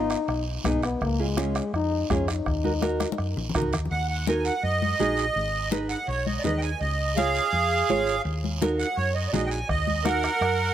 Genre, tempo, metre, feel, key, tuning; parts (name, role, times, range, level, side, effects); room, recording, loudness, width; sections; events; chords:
latin, cumbia; 166 BPM; 4/4; straight; Eb minor; A4 = 437 Hz
dark trombone; second line; 0.0-3.5 s; Ab3 to Eb4; -28 LUFS; left 5 dB
nylon-string guitar; accompaniment; 0.0-10.3 s; Cb4 to Db5; -30 LUFS; right 3 dB
hollow-body short-scale fingered electric bass; bass; 0.0-10.7 s; Ab1 to Gb2; -29 LUFS; equal
bombo; percussion; 0.1-3.9, 9.7-10.6 s; -31 LUFS; equal
guiro; percussion; 0.1-10.7 s; -39 LUFS; right 6 dB
congas; percussion; 0.3-10.6 s; -31 LUFS; left 6 dB
accordion; melody; 3.9-10.7 s; Ab4 to Ab5; -25 LUFS; right 3 dB; light tremolo tuning, slapback echo
light reverb; -23 LUFS; side -11 dB against mid
0.0-3.9 A section; 3.9-10.7 B section
trombone solo 0.0-3.9; drum fill 3.0-3.9; accordion solo 3.9-10.7
0.0 Abm; 1.0 Db; 2.5 Ebm; 5.4 Abm; 6.8 Db; 8.3 Ebm